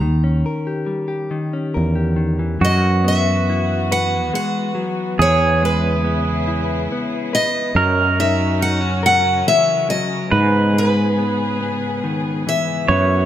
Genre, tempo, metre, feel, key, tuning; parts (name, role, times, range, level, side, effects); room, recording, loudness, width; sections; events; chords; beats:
acoustic folk-pop ballad; 70 BPM; 3/4; straight; G# minor; A4 = 439 Hz
picked steel-string acoustic guitar; melody; 0.0-13.3 s; B4 to A#5; -20 LUFS; left 1 dB
direct-recorded clean electric guitar; accompaniment; 0.0-13.3 s; G#2 to B4; -23 LUFS; left 3 dB
fretless electric bass; bass; 0.0-13.3 s; D#2 to G#2; -19 LUFS; right 1 dB
pedal steel guitar; second line; 2.6-13.3 s; F#4 to C#5; -22 LUFS; right 4 dB
warm chamber string section; sustained chords; 2.6-13.3 s; C#3 to G#4; -27 LUFS; equal
moderate recital hall reverb, RT60 1.5 s; -16 LUFS; side -11 dB against mid
0.0-2.6 A section; 2.6-13.3 B section
0.0 D#7; 2.6 F#7sus4; 5.2 C#m7/E; 7.8 D#m7/F#; 10.3 G#m
| 0.04 0.90 1.76 | 2.62 3.48 4.34 | 5.20 6.05 6.91 | 7.76 8.62 9.47 | 10.32 11.18 12.04 | 12.89